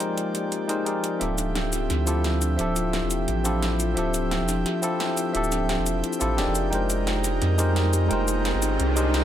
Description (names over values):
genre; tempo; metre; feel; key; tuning
liquid drum and bass; 174 BPM; 4/4; swing 54% on 16ths; D minor; A4 = 440 Hz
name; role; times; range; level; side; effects
bright tine electric piano; accompaniment; 0.0-9.2 s; F3 to G5; -27 LUFS; equal; ping-pong delay
airy breathy pad; sustained chords; 0.0-9.2 s; F3 to G5; -30 LUFS; right 2 dB; chorus, vintage 12-bit sampler grit
kalimba; arpeggios; 0.0-9.2 s; C4 to Ab4; -31 LUFS; left 7 dB; low-pass filter, digital delay
pop drum kit; drums; 0.0-9.2 s; hi-hat, shaker, snare drum; -30 LUFS; equal; overdrive, high-pass filter on hats, high-pass filter on perc, high-pass filter on snare, high-pass filter on room
warm sub bass; bass; 1.2-9.2 s; D1 to F2; -26 LUFS; right 1 dB; none
riser; sound effects; 7.3-9.2 s; none; -31 LUFS; right 1 dB; none
room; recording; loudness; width
light reverb; none; -22 LUFS; side -10 dB against mid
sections
0.0-1.2 A section; 1.2-9.2 B section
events
build-up 1.2-9.2; riser 7.3-9.2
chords
0.0 Fm11; 1.2 Dm11; 6.6 Fm11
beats
0.17 0.52 0.86 | 1.21 1.55 1.90 2.24 | 2.59 2.93 3.28 3.62 | 3.97 4.31 4.66 5.00 | 5.35 5.69 6.04 6.38 | 6.73 7.07 7.42 7.76 | 8.11 8.45 8.80 9.14